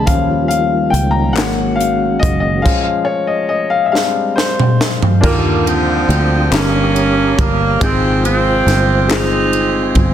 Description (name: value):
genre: slow gospel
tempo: 46 BPM (dotted quarters)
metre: 6/8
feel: straight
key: Eb major from 5.2 s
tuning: A4 = 438 Hz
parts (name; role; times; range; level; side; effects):
- warm upright piano; accompaniment; 0.0-10.1 s; G2 to Bb5; -17 LUFS; left 4 dB; none
- percussive tonewheel organ; sustained chords; 0.0-10.1 s; Eb3 to Eb6; -21 LUFS; right 2 dB; slow rotary speaker, chorus vibrato
- fingered electric bass; bass; 0.0-10.1 s; Gb1 to Eb2; -18 LUFS; equal; none
- crisp fusion drum kit; drums; 0.1-10.1 s; crash cymbal, hi-hat, kick drum, ride cymbal, snare drum, toms; -18 LUFS; equal; none
- group handclap; percussion; 1.4-1.8, 6.5-9.5 s; none; -25 LUFS; left 9 dB; none
- clear saxophone section; melody; 5.3-10.1 s; D3 to Eb4; -16 LUFS; right 3 dB; none
room: light reverb, small room ambience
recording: dense, heavily limited modern master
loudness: -12 LUFS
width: side -10 dB against mid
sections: 0.0-5.2 A section; 5.2-10.1 B section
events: upright piano solo 0.0-5.2; drum fill 3.9-5.2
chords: 0.1 Eb9; 1.4 Ab9sus4; 2.7 Db; 3.9 Fm69/G; 5.2 Ebmaj9; 6.5 Eb7/G; 7.8 Ab6